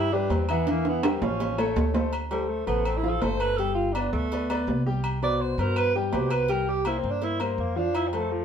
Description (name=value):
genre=Afro-Cuban jazz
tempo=165 BPM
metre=4/4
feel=straight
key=C major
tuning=A4 = 439 Hz
part: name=warm tenor saxophone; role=second line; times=0.0-8.4 s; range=F3 to D5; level=-29 LUFS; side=right 4 dB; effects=none
part: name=clear grand piano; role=accompaniment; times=0.0-8.4 s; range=B2 to G5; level=-28 LUFS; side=left 3 dB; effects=none
part: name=upright bass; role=bass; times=0.0-8.4 s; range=G1 to G2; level=-30 LUFS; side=equal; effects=none
part: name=timbales and agogo bells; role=percussion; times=0.3-8.3 s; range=none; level=-30 LUFS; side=right 2 dB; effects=none
part: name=claves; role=percussion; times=0.5-8.1 s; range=none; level=-42 LUFS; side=equal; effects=none
room=moderate studio reverb, RT60 0.9 s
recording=band playing live in one room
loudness=-23 LUFS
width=side -8 dB against mid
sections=0.0-2.1 A section; 2.1-8.4 A section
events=tenor saxophone solo 0.0-8.4; drum fill 0.7-2.1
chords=0.0 Cmaj7; 0.7 Edim; 1.4 Aaug; 2.1 Dm7; 3.6 G; 5.0 C5